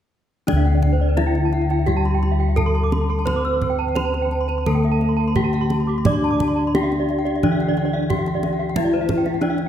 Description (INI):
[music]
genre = Balinese gamelan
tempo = 87 BPM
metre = 4/4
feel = uneven beats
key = D slendro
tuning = A4 = 440 Hz
[part]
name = gamelan-type bronze metallophone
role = melody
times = 0.5-9.7 s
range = D4 to D5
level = -24 LUFS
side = left 1 dB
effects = tape echo
[part]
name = gamelan-type bronze metallophone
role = accompaniment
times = 0.5-9.7 s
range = D3 to D4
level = -25 LUFS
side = left 1 dB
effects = none
[part]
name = gamelan-type bronze metallophone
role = arpeggios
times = 0.5-9.7 s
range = C5-45c to E6+30c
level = -29 LUFS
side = left 4 dB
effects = none
[part]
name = gamelan-type bossed gongs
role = bass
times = 0.5-9.5 s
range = D2 to D5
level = -22 LUFS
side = left 1 dB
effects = none
[part]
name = kendang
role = percussion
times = 0.5-9.7 s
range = none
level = -26 LUFS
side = right 3 dB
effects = none
[part]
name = gamelan-type bronze metallophone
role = arpeggios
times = 0.6-9.7 s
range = C5-45c to D6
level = -29 LUFS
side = right 6 dB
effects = none
[sound]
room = wet recital hall reverb, RT60 1.6 s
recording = none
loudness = -17 LUFS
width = side -10 dB against mid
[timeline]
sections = 0.5-9.7 A section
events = none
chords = none